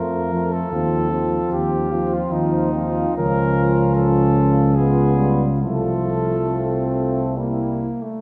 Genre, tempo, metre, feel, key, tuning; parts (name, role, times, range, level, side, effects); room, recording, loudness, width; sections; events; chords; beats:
classical, hymn-like piece for brass band; 67-78 BPM; 3/4; rubato; F major; A4 = 440 Hz
mellow flugelhorn; melody; 0.0-7.3 s; Eb4 to Bb4; -27 LUFS; equal
dark French horn section; second line; 0.0-7.9 s; E4 to F4; -27 LUFS; equal
clear euphonium; accompaniment; 0.0-7.9 s; G3 to Db4; -30 LUFS; equal
warm trombone; accompaniment; 0.0-8.2 s; F3 to C4; -29 LUFS; equal
warm tuba; bass; 0.0-7.9 s; C2 to F2; -23 LUFS; equal
wet scoring stage reverb, RT60 1.8 s; heard from further back in the room; -20 LUFS; mono
0.0-8.2 A section
0.0 F; 0.7 F7/Eb; 3.2 Bbm/Db; 4.8 Db7; 5.6 F/C; 7.4 C
| 0.71 1.51 2.31 | 3.16 3.96 4.76 | 5.61 6.48 7.37